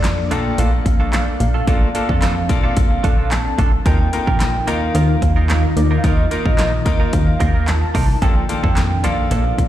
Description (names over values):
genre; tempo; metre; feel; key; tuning
dance-pop; 110 BPM; 4/4; straight; Bb major; A4 = 440 Hz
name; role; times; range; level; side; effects
warm velvety synth lead; melody; 0.0-9.7 s; D5 to A5; -25 LUFS; right 1 dB; chorus, dub echo
bright grand piano; accompaniment; 0.0-9.7 s; Bb3 to Bb4; -25 LUFS; left 5 dB; sidechain pumping
glassy FM pad; sustained chords; 0.1-9.7 s; Bb2 to Bb4; -26 LUFS; left 1 dB; ensemble chorus, built-in reverb, sidechain pumping
direct-recorded clean electric guitar; riff; 0.0-9.6 s; F3 to Bb4; -28 LUFS; right 7 dB; wide subtle chorus
plucky analog bass; bass; 0.0-9.7 s; Bb1 to F2; -18 LUFS; equal; sidechain pumping
pop drum kit; drums; 0.0-9.7 s; handclaps, hi-hat, kick drum, snare drum; -18 LUFS; equal; overdrive
room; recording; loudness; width
little or no reverb; played on a big sound system in a bare room, large studio reverb; -14 LUFS; side -12 dB against mid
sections
0.0-9.7 A section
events
none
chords
0.0 Bbmaj7; 3.9 Ebsus2; 8.2 Bbmaj7